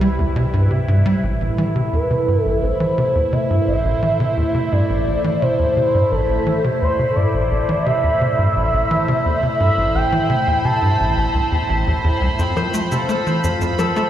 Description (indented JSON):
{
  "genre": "ambient, sequencer-driven space music",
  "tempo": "86 BPM",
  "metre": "4/4",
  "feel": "straight",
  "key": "unclear",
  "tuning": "A4 = 440 Hz",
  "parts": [
    { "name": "expressive portamento lead", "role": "melody", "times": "0.0-11.7 s", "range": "G4 to A5", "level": "-21 LUFS", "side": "equal", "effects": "chorus, ping-pong delay" },
    { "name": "phased analog pad", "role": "sustained chords", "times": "0.0-14.1 s", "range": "A2 to C5", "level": "-22 LUFS", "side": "right 1 dB", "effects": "phaser, chorus" },
    { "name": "tight sequencer bass", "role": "riff", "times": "0.0-14.0 s", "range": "A1 to A3", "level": "-19 LUFS", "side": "equal", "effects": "wide subtle chorus, cassette tape, ping-pong delay" },
    { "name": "warm sub bass", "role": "bass", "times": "0.0-1.2 s", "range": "C2", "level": "-26 LUFS", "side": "equal", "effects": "none" },
    { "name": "bubbling stepped-filter texture", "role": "texture", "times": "1.2-14.1 s", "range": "B5", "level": "-30 LUFS", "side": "equal", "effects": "chorus, built-in reverb" },
    { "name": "concert harp", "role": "arpeggios", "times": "12.4-14.1 s", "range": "C4 to C5", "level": "-24 LUFS", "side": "left 2 dB", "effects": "auto-pan, ping-pong delay" },
    { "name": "cabasa and percussion blips", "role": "percussion", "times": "12.4-14.1 s", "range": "none", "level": "-32 LUFS", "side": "left 3 dB", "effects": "overdrive, ping-pong delay" }
  ],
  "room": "wet huge ambient reverb, RT60 8.9 s",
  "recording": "played on a big sound system in a bare room, cassette tape, stone room reverb",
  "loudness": "-16 LUFS",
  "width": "side -11 dB against mid",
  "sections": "0.0-1.2 A section; 1.2-14.1 B section",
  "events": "none",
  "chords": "0.0 Cmaj7; 1.2 Am; 12.4 F"
}